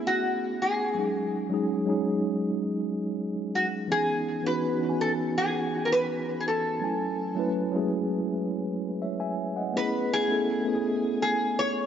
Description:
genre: R&B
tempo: 82 BPM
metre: 4/4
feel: straight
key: C# minor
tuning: A4 = 440 Hz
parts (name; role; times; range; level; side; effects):
- metal-body resonator slide guitar; melody; 0.0-11.9 s; F#4 to C#5; -28 LUFS; equal; lush chorus, analog delay
- mellow tine electric piano; accompaniment; 0.0-11.9 s; E3 to G#5; -27 LUFS; equal; medium stereo tremolo
room: wet plate reverb, RT60 3.4 s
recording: dreamy mix soaked in reverb, nothing above 7.6 kHz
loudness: -25 LUFS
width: side -8 dB against mid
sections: 0.0-11.9 A section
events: none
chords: 0.0 Amaj7; 1.0 G#7sus4; 3.9 C#m7; 6.8 F#m7; 9.7 Amaj7

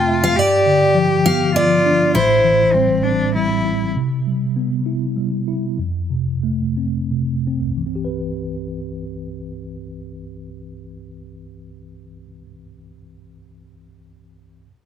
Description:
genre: acoustic folk-pop ballad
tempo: 82-102 BPM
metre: 3/4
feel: straight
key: C major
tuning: A4 = 439 Hz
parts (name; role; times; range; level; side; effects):
- picked steel-string acoustic guitar; melody; 0.0-3.3 s; C5 to G5; -16 LUFS; equal; none
- clear cello; second line; 0.0-3.9 s; C4 to G4; -19 LUFS; left 3 dB; none
- mellow tine electric piano; accompaniment; 0.0-14.7 s; A1 to E5; -20 LUFS; equal; medium stereo tremolo
room: light reverb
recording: close, detailed microphones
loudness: -16 LUFS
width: side -8 dB against mid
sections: 0.0-3.9 A section; 3.9-7.8 B section; 7.8-12.2 C section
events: slowing down 3.9-7.8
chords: 0.4 G7; 2.1 Am7; 3.9 Cmaj7; 5.8 F; 7.8 Cmaj7

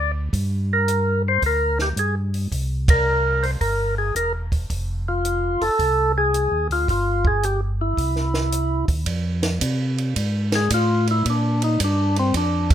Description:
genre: soul jazz organ trio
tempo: 110 BPM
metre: 4/4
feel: swing 67% on 8ths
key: unclear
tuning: A4 = 440 Hz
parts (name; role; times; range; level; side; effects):
- percussive tonewheel organ; melody; 0.0-12.7 s; C4 to D5; -21 LUFS; equal; slow rotary speaker
- mellow tonewheel organ; bass; 0.0-12.7 s; E1 to C3; -22 LUFS; equal; chorus vibrato, slow rotary speaker
- compact cocktail drum kit; drums; 0.3-12.7 s; hi-hat, kick drum, ride cymbal, snare drum; -24 LUFS; right 1 dB; none
room: light reverb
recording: minimal, uncompressed stereo recording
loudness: -19 LUFS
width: side -10 dB against mid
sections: 0.0-9.1 A section; 9.1-12.7 B section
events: band accent 2.8; tonewheel organ solo 9.1-12.7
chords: 0.3 Gm; 2.5 C7; 4.7 F7#9; 6.9 Fmadd9/G; 8.0 C; 9.1 F; 11.2 Bb5

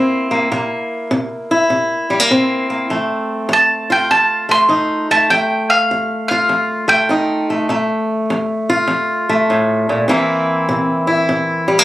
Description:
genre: acoustic country blues, solo or duo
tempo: 100 BPM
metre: 4/4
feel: swing 66% on 8ths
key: unclear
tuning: A4 = 440 Hz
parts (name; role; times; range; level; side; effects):
- fingerpicked swing-style acoustic guitar; accompaniment; 0.0-11.8 s; F2 to F4; -15 LUFS; equal; none
- bowl-back mandolin; melody; 3.5-8.6 s; F5 to C6; -13 LUFS; right 1 dB; none
room: moderate booth ambience, RT60 0.2 s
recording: recorded on a phone in the room, studio ambience, compression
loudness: -13 LUFS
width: side -15 dB against mid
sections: 0.0-11.8 A section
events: none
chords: 0.0 C7; 2.9 F7; 10.1 C7

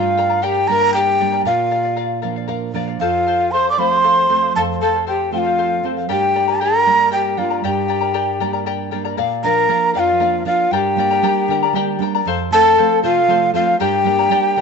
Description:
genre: andean folk, Andean ensemble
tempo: 78 BPM (dotted quarters)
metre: 6/8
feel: straight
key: G minor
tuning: A4 = 441 Hz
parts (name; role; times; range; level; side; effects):
- breathy large quena; melody; 0.0-14.6 s; F5 to D6; -16 LUFS; right 2 dB; slapback echo
- breathy bright pan flute; second line; 0.0-14.6 s; F4 to D5; -21 LUFS; left 13 dB; none
- charango; accompaniment; 0.0-14.6 s; G4 to Bb5; -23 LUFS; left 14 dB; none
- nylon-string guitar; accompaniment; 0.0-14.6 s; F2 to D5; -24 LUFS; right 11 dB; none
room: moderate plate reverb, RT60 2.8 s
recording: 1960s-style stereo with parts hard left and right, nothing above 7.9 kHz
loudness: -14 LUFS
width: side -5 dB against mid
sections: 0.0-9.2 A section; 9.2-14.6 B section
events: nylon-string guitar fill 2.2-3.0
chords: 0.0 Gm; 1.5 Bb; 3.0 F; 6.1 Gm; 9.2 Bb; 10.7 Gm; 12.3 F; 13.8 Gm

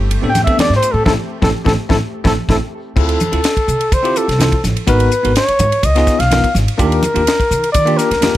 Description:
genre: electric jazz fusion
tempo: 126 BPM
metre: 4/4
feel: straight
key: unclear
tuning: A4 = 440 Hz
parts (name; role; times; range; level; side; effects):
- bell-like tine electric piano; accompaniment; 0.0-8.4 s; A3 to C5; -20 LUFS; left 1 dB; medium stereo tremolo, plate reverb
- brassy analog pad; sustained chords; 0.0-2.9 s; A3 to G4; -28 LUFS; left 2 dB; chorus, plate reverb
- upright bass; bass; 0.0-8.3 s; G1 to Eb3; -18 LUFS; equal; none
- tight funk drum kit; drums; 0.1-8.4 s; crash cymbal, hi-hat, kick drum, ride cymbal, snare drum; -18 LUFS; equal; none
- congas; percussion; 0.1-8.3 s; none; -22 LUFS; right 1 dB; none
- trumpet with bucket mute; melody; 0.3-8.4 s; A4 to G5; -16 LUFS; left 1 dB; plate reverb
room: light reverb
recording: none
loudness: -12 LUFS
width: side -14 dB against mid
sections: 0.0-3.0 A section; 3.0-8.4 B section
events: muted trumpet solo 0.0-3.0; band accent 1.1-3.0; tine electric piano fill 2.0-3.0; drum fill 2.5-3.0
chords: 0.0 Am11; 3.0 Dm9; 4.9 G#m7; 5.8 C#9; 6.8 Ebmaj9

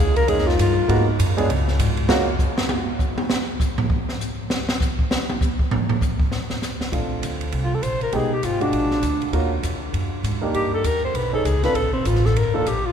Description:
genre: jazz, small-group swing and bop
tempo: 199 BPM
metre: 4/4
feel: swing 61% on 8ths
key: unclear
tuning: A4 = 440 Hz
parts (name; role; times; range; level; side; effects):
- breathy alto saxophone; melody; 0.0-1.0, 7.6-12.9 s; C4 to C5; -24 LUFS; left 2 dB; none
- upright bass; bass; 0.0-2.3, 6.8-12.9 s; G1 to Ab2; -22 LUFS; equal; none
- open jazz drum kit; drums; 0.2-12.7 s; hi-hat, kick drum, ride cymbal, snare drum, toms; -24 LUFS; equal; none
- warm upright piano; accompaniment; 0.3-2.3, 6.9-12.7 s; Ab3 to A4; -26 LUFS; right 2 dB; none
room: wet cathedral reverb, RT60 5.2 s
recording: recorded in a church or concert hall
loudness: -19 LUFS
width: side -8 dB against mid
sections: 0.0-6.9 A section; 6.9-12.9 B section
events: alto saxophone solo 0.0-6.9; drum solo 2.1-6.9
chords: 0.0 Db6; 0.9 Abm9; 1.5 Db5; 2.1 Gbmaj7; 3.3 N.C.; 6.9 Bbmaj9; 8.1 Fm7b5; 8.7 Bb7b13; 9.3 Ebm9; 10.5 Ebmaj7#11; 11.1 B13; 11.8 Fadd11; 12.4 Gm9

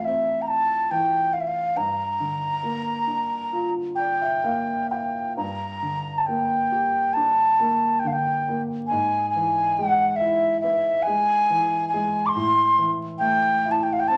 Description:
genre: celtic folk, Celtic slow air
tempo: 69 BPM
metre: 4/4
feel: rubato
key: G dorian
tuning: A4 = 441 Hz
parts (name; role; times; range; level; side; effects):
- bright baroque flute; melody; 0.0-14.2 s; E5 to D6; -23 LUFS; equal; none
- dark upright piano; accompaniment; 0.0-14.2 s; F2 to G5; -32 LUFS; equal; none
room: wet large studio reverb, RT60 1.1 s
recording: vinyl crackle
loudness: -23 LUFS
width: mono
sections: 0.0-5.4 A section; 5.4-14.2 B section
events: upright piano fill 3.5-5.4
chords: 0.0 Fmaj7; 1.8 Gm7; 5.4 Gm; 8.9 E/G#; 12.3 Am

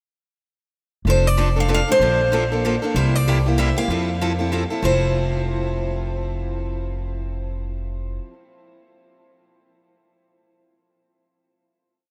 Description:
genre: acoustic string swing (jazz manouche)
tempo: 191 BPM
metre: 3/4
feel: swing 58% on 8ths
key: F major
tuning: A4 = 444 Hz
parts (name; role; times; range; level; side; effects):
- upright bass; bass; 1.0-8.2 s; F1 to F2; -24 LUFS; equal; none
- picked steel-string acoustic guitar; melody; 1.1-8.2 s; C5 to F5; -25 LUFS; equal; none
- picked steel-string acoustic guitar; accompaniment; 1.1-8.4 s; C3 to A4; -27 LUFS; equal; none
room: moderate huge ambient reverb, RT60 7.5 s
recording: in a vast, echoing space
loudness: -21 LUFS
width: mono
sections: 1.1-4.8 A section; 4.8-6.7 final chord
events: none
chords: 1.1 F6; 2.0 Bbmaj9; 2.9 C7; 3.9 Fmaj7

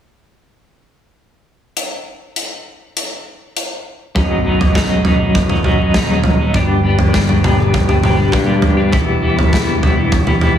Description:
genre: quiet-loud alternative rock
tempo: 100 BPM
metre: 4/4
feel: straight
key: unclear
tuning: A4 = 439 Hz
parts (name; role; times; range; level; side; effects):
- big rock drum kit; drums; 1.8-10.6 s; hi-hat, kick drum, snare drum, toms; -16 LUFS; equal; none
- twelve-string electric guitar; arpeggios; 4.2-10.6 s; B1 to G4; -16 LUFS; left 1 dB; tremolo
- modern bright picked electric bass; bass; 4.2-10.6 s; B0 to G2; -18 LUFS; equal; none
room: light reverb, studio reverb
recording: heavily compressed radio sound, multiband compression, small room ambience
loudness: -12 LUFS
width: side -9 dB against mid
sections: 1.8-4.2 A section; 4.2-10.6 B section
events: none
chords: 1.8 N.C.; 4.2 B; 6.5 G; 8.9 Em

